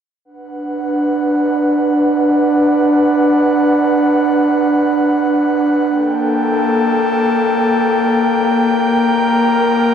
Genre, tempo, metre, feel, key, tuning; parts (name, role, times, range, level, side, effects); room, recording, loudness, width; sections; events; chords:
drum and bass; free time; D major; A4 = 440 Hz
airy breathy pad; sustained chords; 0.2-9.9 s; Bb3 to G5; -12 LUFS; equal; chorus
moderate lush hall reverb, RT60 2.6 s; -12 LUFS; side -8 dB against mid
0.3-9.9 A section
filter sweep on analog synth pad 0.3-9.9
0.3 D6; 5.9 Gmadd9